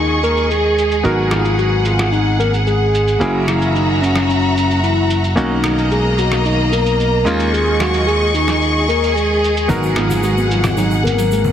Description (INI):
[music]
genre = nu-disco, nu disco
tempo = 111 BPM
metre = 4/4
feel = straight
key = G# minor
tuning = A4 = 440 Hz
[part]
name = soft octave-layered synth lead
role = melody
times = 0.0-11.5 s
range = C#4 to A#4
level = -18 LUFS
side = left 1 dB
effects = chorus, tape echo
[part]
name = warm electric grand piano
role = accompaniment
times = 0.0-11.5 s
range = G#3 to A#4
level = -23 LUFS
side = equal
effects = low-pass filter, digital delay
[part]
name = warm studio violin section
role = sustained chords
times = 0.0-11.5 s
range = A#3 to C#6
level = -20 LUFS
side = equal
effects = low-pass filter
[part]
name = glassy slap bass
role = bass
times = 0.0-11.5 s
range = F#1 to D#2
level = -18 LUFS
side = equal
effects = none
[part]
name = cabasa and rim click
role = drums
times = 0.2-11.4 s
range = none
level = -26 LUFS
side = right 1 dB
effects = low-pass filter on snare, small room ambience, low-pass filter on perc, low-pass filter on room
[part]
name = soft round pluck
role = arpeggios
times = 9.7-11.5 s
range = F#3 to F#4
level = -22 LUFS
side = right 1 dB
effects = chorus, tape echo
[part]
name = congas and tube shaker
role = percussion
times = 9.7-11.5 s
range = none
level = -23 LUFS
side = left 2 dB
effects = none
[sound]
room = moderate echo chamber reverb, RT60 1.5 s, small room ambience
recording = heavily compressed radio sound, multiband compression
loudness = -13 LUFS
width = side -9 dB against mid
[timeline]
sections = 0.0-11.5 A section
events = none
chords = 0.0 D#7sus4; 1.0 G#m7; 3.2 F#7; 5.4 Bmaj7; 7.3 D#7sus4; 9.7 G#m7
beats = 0.50 | 1.04 1.58 2.12 2.67 | 3.21 3.75 4.29 4.83 | 5.37 5.91 6.45 6.99 | 7.53 8.07 8.61 9.15 | 9.69 10.23 10.77 11.31